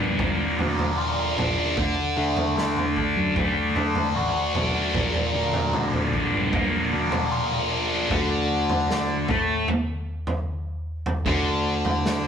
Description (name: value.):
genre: psychedelic rock.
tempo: 76 BPM.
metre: 4/4.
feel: straight.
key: unclear.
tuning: A4 = 440 Hz.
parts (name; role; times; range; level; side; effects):
thick fuzz guitar; riff; 0.0-12.3 s; Bb2 to F#4; -23 LUFS; left 1 dB; distortion, phaser.
fuzz picked electric bass; bass; 0.0-12.3 s; G1 to D3; -29 LUFS; equal; overdrive.
raw garage drum kit; drums; 0.2-12.2 s; kick drum, snare drum, toms; -28 LUFS; right 1 dB; none.
room: moderate stone room reverb, RT60 1.2 s.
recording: rough rehearsal-room recording.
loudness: -21 LUFS.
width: side -8 dB against mid.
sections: 0.0-8.1 A section; 8.1-12.3 B section.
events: none.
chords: 0.0 Bb; 1.8 D; 4.9 Bb; 8.1 D5.